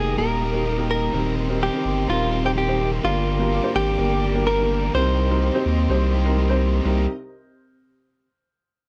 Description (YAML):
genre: piano-driven pop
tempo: 126 BPM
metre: 4/4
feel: straight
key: C minor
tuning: A4 = 440 Hz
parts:
  - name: direct-recorded clean electric guitar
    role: melody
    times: 0.0-6.3 s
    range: F4 to C5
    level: -27 LUFS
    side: equal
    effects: analog chorus
  - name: warm baby grand piano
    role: accompaniment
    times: 0.0-7.1 s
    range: C2 to C5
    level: -28 LUFS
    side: equal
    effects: none
  - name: dark symphonic string section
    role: sustained chords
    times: 0.0-7.1 s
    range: C3 to Eb6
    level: -38 LUFS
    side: equal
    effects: none
  - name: overdriven electric guitar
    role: riff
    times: 0.0-7.0 s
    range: G2 to Bb4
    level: -31 LUFS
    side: equal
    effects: none
  - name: saturated sub bass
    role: bass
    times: 0.0-7.1 s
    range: Eb1 to Eb2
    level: -25 LUFS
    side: equal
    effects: none
room: little or no reverb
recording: dry, close 1970s-style studio recording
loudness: -21 LUFS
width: mono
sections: 0.0-6.8 A section; 6.8-8.8 B section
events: none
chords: 0.0 Eb; 1.1 Cm7/Eb; 3.0 Gm; 4.9 Cm7